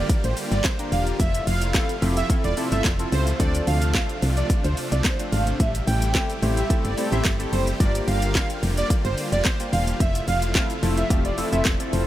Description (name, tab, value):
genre	dance-pop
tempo	109 BPM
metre	4/4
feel	straight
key	unclear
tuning	A4 = 440 Hz
part	airy dreamy lead	melody	0.0-12.0 s	C5 to G5	-28 LUFS	right 2 dB	chorus, sidechain pumping, analog delay
part	supersaw chords	sustained chords	0.0-12.1 s	C3 to G4	-31 LUFS	equal	sidechain pumping
part	solid FM bass	bass	0.0-12.0 s	E1 to D2	-24 LUFS	equal	sidechain pumping
part	house drum kit	drums	0.1-12.1 s	handclaps, hi-hat, kick drum, shaker, snare drum	-24 LUFS	equal	none
part	chorused polysynth	accompaniment	0.8-12.1 s	A3 to C5	-30 LUFS	left 1 dB	sidechain pumping
room	light reverb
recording	none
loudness	-20 LUFS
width	side -13 dB against mid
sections	0.0-12.1 A section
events	none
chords	0.0 Gm7; 1.2 Fmaj7; 3.4 Dm7; 5.6 Am7; 7.8 Gm7; 10.0 Fmaj7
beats	0.10 0.65 | 1.20 1.75 2.30 2.85 | 3.40 3.95 4.50 5.05 | 5.60 6.15 6.70 7.25 | 7.80 8.35 8.90 9.45 | 10.00 10.55 11.11 11.65